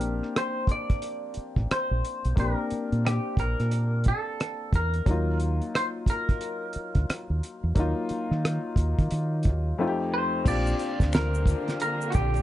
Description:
R&B, neo-soul; 89 BPM; 4/4; swing 62% on 16ths; Bb major; A4 = 440 Hz
semi-hollow electric guitar; melody; 0.0-12.4 s; Gb4 to D5; -31 LUFS; equal; wide subtle chorus
clear baby grand piano; accompaniment; 0.0-12.4 s; F2 to G4; -32 LUFS; left 3 dB
deep dub fingered electric bass; bass; 0.0-12.4 s; A1 to Eb3; -26 LUFS; equal
cloth-damped thuddy drum kit; drums; 0.0-12.4 s; crash cymbal, hi-hat, kick drum, rim click, snare drum; -25 LUFS; equal
warm studio string section; sustained chords; 10.5-12.4 s; D3 to F4; -35 LUFS; equal
tube shaker and finger snaps; percussion; 10.5-12.4 s; -43 LUFS; left 7 dB
little or no reverb; dark, warm production, nothing above 10.9 kHz; -24 LUFS; side -13 dB against mid
0.0-10.5 A section; 10.5-12.4 B section
0.0 Bb69; 5.1 Ebmadd9; 9.8 F7; 10.5 Bb6
0.35 1.02 1.70 | 2.37 3.04 3.72 4.39 | 5.07 5.74 6.42 7.09 | 7.76 8.44 9.11 9.79 | 10.46 11.13 11.81

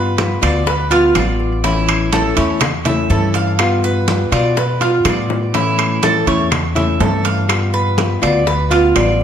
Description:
latin, Cuban son and guajira; 123 BPM; 4/4; straight; A4 = 440 Hz
nylon-string guitar; accompaniment; 0.0-9.2 s; E3 to F4; -19 LUFS; left 4 dB
Cuban tres; arpeggios; 0.0-9.2 s; E4 to F5; -18 LUFS; right 3 dB; analog delay
upright bass; bass; 0.0-9.2 s; A1 to B2; -19 LUFS; equal
bongos; percussion; 0.2-9.2 s; -26 LUFS; left 7 dB
congas; percussion; 0.2-9.2 s; -25 LUFS; equal
timbales; percussion; 0.2-9.2 s; -23 LUFS; right 8 dB
claves; percussion; 0.4-9.2 s; -27 LUFS; left 4 dB
moderate large studio reverb, RT60 1.3 s; lossy compression artefacts; -13 LUFS; side -8 dB against mid
0.0-9.2 A section
drum fill 5.1-5.5
0.0 G7; 1.6 A; 3.6 G7; 5.5 A; 7.5 G7
0.18 0.67 1.16 | 1.65 2.13 2.62 3.11 | 3.60 4.08 4.57 5.06 | 5.54 6.03 6.52 7.00 | 7.49 7.98 8.47 8.96

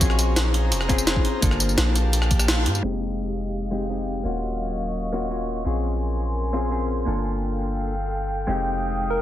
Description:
liquid drum and bass; 170 BPM; 4/4; straight; A4 = 440 Hz
vintage hollow-body jazz guitar; accompaniment; 0.0-9.2 s; Ab3 to A4; -28 LUFS; left 3 dB; vintage 12-bit sampler grit, digital delay
airy breathy pad; sustained chords; 0.0-9.2 s; Gb3 to Eb6; -30 LUFS; equal; chorus, sidechain pumping
long sustained 808-style bass; bass; 0.0-9.2 s; Eb1 to G2; -25 LUFS; equal
electronic kick drum; drums; 0.0-2.4 s; -22 LUFS; equal
jungle sampler-style drum kit; drums; 0.0-2.8 s; hi-hat, rim click, snare drum, tambourine; -24 LUFS; equal
plucky unison lead; melody; 9.1-9.2 s; Bb4; -32 LUFS; equal
light reverb, digital ambience; low-pass filter; -21 LUFS; side -12 dB against mid
0.0-2.8 A section; 2.8-9.2 B section
drop 0.0-2.8; kick drops out 2.5-2.8; band accent 2.5; filter sweep on analog synth pad 2.8-9.2
0.0 Bbm9; 1.4 Gm9; 2.8 Fm9; 4.2 Ebm9; 5.7 Bbm9; 7.1 Gm9; 8.5 Fm9
| 0.01 0.36 0.72 1.07 | 1.42 1.78 2.13 2.48 | 2.84 3.19 3.54 3.90 | 4.25 4.60 4.95 5.31 | 5.66 6.01 6.37 6.72 | 7.07 7.42 7.78 8.13 | 8.48 8.84 9.19

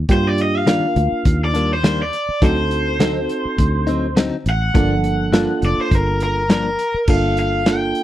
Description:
straight-eighth soul blues; 103 BPM; 4/4; swing 53% on 16ths; G minor; A4 = 440 Hz
fingered electric bass; bass; 0.0-7.9 s; F1 to G2; -21 LUFS; equal
raw garage guitar; melody; 0.1-8.0 s; Bb4 to G5; -22 LUFS; left 1 dB; overdrive, slapback echo
reed electric piano; accompaniment; 0.1-8.0 s; F3 to Bb4; -21 LUFS; right 3 dB
warm soul drum kit; drums; 0.1-8.0 s; crash cymbal, hi-hat, kick drum, snare drum; -18 LUFS; equal
direct-recorded clean electric guitar; stabs; 0.7-6.7 s; G2 to Eb4; -21 LUFS; left 3 dB; slapback echo
little or no reverb; dry, close 1970s-style studio recording; -15 LUFS; side -13 dB against mid
0.0-7.1 A section
overdriven electric guitar solo 0.0-7.1
0.0 Ebmaj7; 2.4 D7b9; 4.8 Gm7
| 0.09 0.67 1.25 1.84 | 2.42 3.00 3.59 4.17 | 4.75 5.33 5.92 6.50 | 7.08 7.66

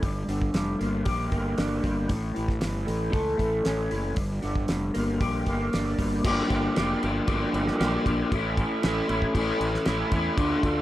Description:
psychedelic rock; 116 BPM; 4/4; straight; A phrygian dominant; A4 = 442 Hz
electric guitar through a small old amp; riff; 0.0-10.8 s; G2 to A4; -26 LUFS; equal; rotary speaker
fuzz fingered electric bass; bass; 0.0-10.8 s; F1 to E2; -31 LUFS; equal; overdrive
cloth-damped thuddy drum kit; drums; 0.0-10.8 s; crash cymbal, hi-hat, kick drum, snare drum; -30 LUFS; equal
light reverb, small room reverb; -24 LUFS; side -14 dB against mid
0.0-6.2 A section; 6.2-10.8 B section
0.0 Gm; 2.1 A; 4.2 Gm7; 8.3 A
| 0.03 0.55 1.07 1.59 | 2.11 2.62 3.14 3.66 | 4.18 4.70 5.21 5.73 | 6.25 6.77 7.28 7.80 | 8.31 8.83 9.34 9.86 | 10.37

